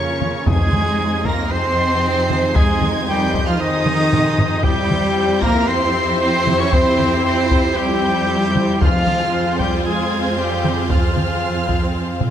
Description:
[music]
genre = cinematic, epic orchestral film score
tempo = 115 BPM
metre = 4/4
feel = straight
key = F minor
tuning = A4 = 440 Hz
[part]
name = rich symphonic violin section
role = melody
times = 0.0-12.3 s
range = Db6 to Db7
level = -27 LUFS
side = right 2 dB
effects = none
[part]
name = concert flute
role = second line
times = 0.0-12.3 s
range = Db5 to Db6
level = -25 LUFS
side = left 2 dB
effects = none
[part]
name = rich symphonic violin section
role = second line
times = 0.0-12.3 s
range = G4 to Db5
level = -28 LUFS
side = left 1 dB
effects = none
[part]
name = warm symphonic viola section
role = accompaniment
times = 0.0-12.3 s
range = C3 to F4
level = -26 LUFS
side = right 1 dB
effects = none
[part]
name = clear symphonic string section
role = sustained chords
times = 0.0-12.3 s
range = C4 to C6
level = -28 LUFS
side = left 1 dB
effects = none
[part]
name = mellow French horn section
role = sustained chords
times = 0.0-12.3 s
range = Db3 to Db4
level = -25 LUFS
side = left 3 dB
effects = none
[part]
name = mellow trumpet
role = stabs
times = 0.0-12.3 s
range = Db4 to Db5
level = -25 LUFS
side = right 2 dB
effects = none
[part]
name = rich symphonic cello section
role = bass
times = 0.0-12.3 s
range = Db3 to Db4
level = -24 LUFS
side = right 2 dB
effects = none
[part]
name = warm symphonic double bass section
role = bass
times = 0.0-12.3 s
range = F2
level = -24 LUFS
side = right 3 dB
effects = none
[part]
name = taiko ensemble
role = drums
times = 0.2-12.3 s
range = none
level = -20 LUFS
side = equal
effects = none
[part]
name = timpani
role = percussion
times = 0.5-1.2, 8.8-9.6 s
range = F2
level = -23 LUFS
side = equal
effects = none
[sound]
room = moderate scoring stage reverb, RT60 1.9 s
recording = none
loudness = -15 LUFS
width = side -10 dB against mid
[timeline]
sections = 0.0-12.3 A section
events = drum fill 3.9-4.6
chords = 0.5 Ab/F; 4.6 C/F; 8.8 Fm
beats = | 0.47 0.99 1.51 2.03 | 2.56 3.08 3.60 4.12 | 4.64 5.17 5.69 6.21 | 6.73 7.25 7.77 8.29 | 8.82 9.34 9.86 10.38 | 10.90 11.43 11.95

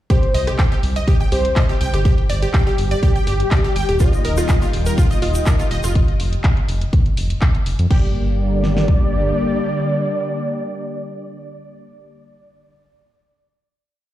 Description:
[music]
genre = progressive house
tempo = 123 BPM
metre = 4/4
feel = straight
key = G minor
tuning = A4 = 440 Hz
[part]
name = wide unison lead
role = melody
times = 0.1-12.0 s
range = G4 to Eb5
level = -25 LUFS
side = equal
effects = tape echo
[part]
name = wide unison pluck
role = arpeggios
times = 0.1-8.1 s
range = F4 to G5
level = -26 LUFS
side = right 1 dB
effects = sidechain pumping, ping-pong delay
[part]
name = house drum kit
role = drums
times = 0.1-8.0 s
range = crash cymbal, handclaps, hi-hat, rim click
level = -28 LUFS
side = left 1 dB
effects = none
[part]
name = pop drum kit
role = drums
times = 0.1-9.0 s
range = kick drum, snare drum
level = -16 LUFS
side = equal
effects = none
[part]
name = round analog bass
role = bass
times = 0.3-9.3 s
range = Eb1 to F2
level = -20 LUFS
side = equal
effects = sidechain pumping
[part]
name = warm analog pad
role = sustained chords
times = 4.0-12.0 s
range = D3 to G4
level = -24 LUFS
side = left 1 dB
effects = chorus, sidechain pumping
[part]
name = tube shaker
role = percussion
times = 4.0-5.9 s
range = none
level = -33 LUFS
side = right 3 dB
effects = none
[part]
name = drifting glass-harmonics texture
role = texture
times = 4.5-6.0 s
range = G4 to G5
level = -36 LUFS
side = right 1 dB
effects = chorus, built-in reverb, sidechain pumping
[sound]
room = light reverb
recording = played on a big sound system in a bare room, large studio reverb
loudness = -15 LUFS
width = side -14 dB against mid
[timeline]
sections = 0.1-7.9 drop; 7.9-11.8 final chord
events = drop 0.1-7.9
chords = 0.1 C5; 2.1 G5; 4.0 Ebadd9; 6.0 N.C.; 7.9 Gm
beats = | 0.10 0.59 1.08 1.56 | 2.05 2.54 3.03 3.52 | 4.00 4.49 4.98 5.47 | 5.95 6.44 6.93 7.42 | 7.91 8.39 8.88 9.37 | 9.86 10.35 10.83 11.32

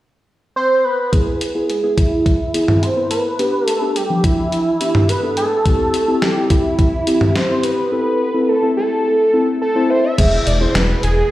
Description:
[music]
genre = synth-pop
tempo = 106 BPM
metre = 4/4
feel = straight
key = unclear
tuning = A4 = 439 Hz
[part]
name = fat analog lead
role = melody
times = 0.6-11.3 s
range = E4 to E5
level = -18 LUFS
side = right 1 dB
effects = low-pass filter, tape echo
[part]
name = muted felt-like synth keys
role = accompaniment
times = 1.1-11.1 s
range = F3 to A5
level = -19 LUFS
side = left 1 dB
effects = chorus
[part]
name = clean 12-bit digital drum machine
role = drums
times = 1.1-11.2 s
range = crash cymbal, hi-hat, kick drum, snare drum, toms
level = -18 LUFS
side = equal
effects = none
[part]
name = smooth gliding synth bass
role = bass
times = 10.2-11.2 s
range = E1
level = -17 LUFS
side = equal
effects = none
[sound]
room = wet plate reverb, RT60 1.8 s, digital ambience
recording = played on a big sound system in a bare room, stone room reverb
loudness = -14 LUFS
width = side -15 dB against mid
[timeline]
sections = 0.0-1.1 A section; 1.1-10.2 B section; 10.2-11.3 C section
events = filter sweep on analog synth lead 1.1-10.2; synth keys fill 9.3-10.2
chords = 0.0 N.C.; 1.1 E; 3.4 G; 5.7 C; 7.9 Am; 10.2 E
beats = 0.00 0.56 | 1.13 1.69 2.26 2.83 | 3.39 3.96 4.52 5.09 | 5.66 6.22 6.79 7.35 | 7.92 8.49 9.05 9.62 | 10.18 10.75

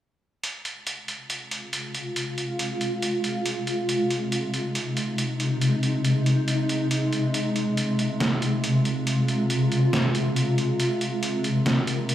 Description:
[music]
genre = deep dubstep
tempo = 139 BPM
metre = 4/4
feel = swing 56% on 16ths, half-time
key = F minor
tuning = A4 = 442 Hz
[part]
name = granular cloud pad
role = sustained chords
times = 1.8-12.1 s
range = C3 to Bb4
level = -23 LUFS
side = equal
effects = built-in reverb, vintage 12-bit sampler grit
[part]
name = trip hop sampler-style drum kit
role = drums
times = 0.4-12.1 s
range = hi-hat, snare drum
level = -29 LUFS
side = right 1 dB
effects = overdrive
[sound]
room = light reverb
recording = played on a big sound system in a bare room, large studio reverb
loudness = -23 LUFS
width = side -12 dB against mid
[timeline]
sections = 0.4-12.1 A section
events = none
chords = 0.4 Fm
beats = | 0.43 0.87 1.30 1.73 | 2.16 2.59 3.02 3.46 | 3.89 4.32 4.75 5.18 | 5.62 6.05 6.48 6.91 | 7.34 7.77 8.21 8.64 | 9.07 9.50 9.93 10.36 | 10.79 11.23 11.66 12.09

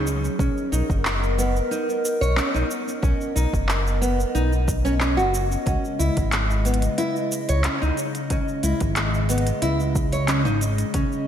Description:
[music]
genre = organic downtempo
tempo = 91 BPM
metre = 4/4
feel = straight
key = unclear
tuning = A4 = 440 Hz
[part]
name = warbly tape-like pad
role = sustained chords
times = 0.0-11.3 s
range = C#3 to D#5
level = -28 LUFS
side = left 1 dB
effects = chorus, built-in reverb, sidechain pumping
[part]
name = nylon-string guitar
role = arpeggios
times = 0.0-11.3 s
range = B3 to C#5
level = -26 LUFS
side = equal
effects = digital delay, slapback echo
[part]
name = smooth gliding synth bass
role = bass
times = 0.0-11.0 s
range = F#1 to C#2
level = -23 LUFS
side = equal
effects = sidechain pumping
[part]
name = organic electronic drum kit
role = drums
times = 0.1-11.2 s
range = handclaps, hi-hat, shaker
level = -29 LUFS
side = equal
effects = overdrive, slapback echo
[part]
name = electronic kick drum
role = drums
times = 0.4-11.1 s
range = none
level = -25 LUFS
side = equal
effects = overdrive
[sound]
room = moderate lush hall reverb, RT60 2.5 s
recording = big arena sound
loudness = -20 LUFS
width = side -9 dB against mid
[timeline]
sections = 0.0-11.3 A section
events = none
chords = 0.4 Bmaj7; 5.7 C#5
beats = | 0.39 1.05 1.71 2.37 | 3.03 3.69 4.35 5.01 | 5.67 6.33 6.99 7.65 | 8.30 8.96 9.62 10.28 | 10.94

